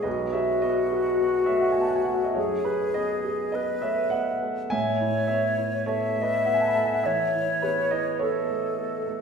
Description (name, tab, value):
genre	classical, impressionist duo for flute and grand piano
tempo	52 BPM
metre	4/4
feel	rubato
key	unclear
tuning	A4 = 439 Hz
part	mellow hollow concert flute	melody	0.0-9.2 s	F#4 to E5	-26 LUFS	left 2 dB	none
part	dark baby grand piano	accompaniment	0.0-9.2 s	B1 to B5	-26 LUFS	right 2 dB	none
room	wet recital hall reverb, RT60 1.6 s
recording	recorded in a church or concert hall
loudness	-22 LUFS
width	side -6 dB against mid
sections	0.0-9.2 A section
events	none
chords	0.1 B13; 4.7 Amaj9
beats	| 0.06 1.22 2.37 3.55 | 4.72 5.89 7.05 8.21